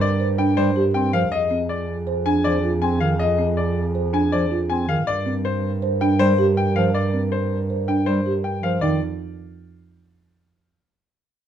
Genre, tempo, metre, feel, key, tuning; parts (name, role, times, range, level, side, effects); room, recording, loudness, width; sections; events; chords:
classical, minimalist pattern music; 160 BPM; 5/4; straight; A4 = 440 Hz
bright concert grand piano; melody; 0.0-9.0 s; C5 to Ab5; -24 LUFS; left 6 dB
warm French horn; second line; 0.0-8.6 s; Ab4 to Bb4; -30 LUFS; equal
warm double bass; bass; 0.0-9.0 s; F2 to G2; -24 LUFS; right 3 dB
folk marimba with soft mallets; arpeggios; 0.2-9.0 s; C4 to C5; -24 LUFS; right 3 dB
mellow bass clarinet; accompaniment; 0.6-9.0 s; Eb3 to C4; -24 LUFS; equal
light reverb; dark, warm production; -18 LUFS; side -9 dB against mid
0.0-8.8 A section; 8.8-10.7 B section
0.0 Gm; 1.3 Fm; 5.1 Gm; 8.8 N.C.